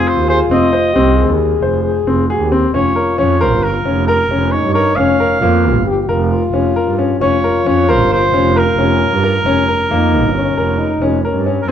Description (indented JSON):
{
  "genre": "contemporary instrumental, chamber music in an uneven meter",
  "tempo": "134 BPM",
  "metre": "5/4",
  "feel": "straight",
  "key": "unclear",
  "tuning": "A4 = 441 Hz",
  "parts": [
    { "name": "clear oboe", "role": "melody", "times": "0.0-11.7 s", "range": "Ab4 to F5", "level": "-17 LUFS", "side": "right 1 dB", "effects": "none" },
    { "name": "clear French horn", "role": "second line", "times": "0.0-11.6 s", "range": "Db4 to Ab4", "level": "-18 LUFS", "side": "left 6 dB", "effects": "none" },
    { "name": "bright baby grand piano", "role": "arpeggios", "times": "0.0-11.7 s", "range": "Bb3 to C5", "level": "-17 LUFS", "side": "left 3 dB", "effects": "none" },
    { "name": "clear double bass", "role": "bass", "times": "0.0-11.7 s", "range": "F1 to G2", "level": "-17 LUFS", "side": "right 4 dB", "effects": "none" }
  ],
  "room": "moderate recital hall reverb, RT60 1.6 s",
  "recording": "dark, warm production",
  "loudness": "-11 LUFS",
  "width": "side -9 dB against mid",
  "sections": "0.0-11.7 A section",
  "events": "none",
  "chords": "0.0 Fm7; 2.7 Bbm/F"
}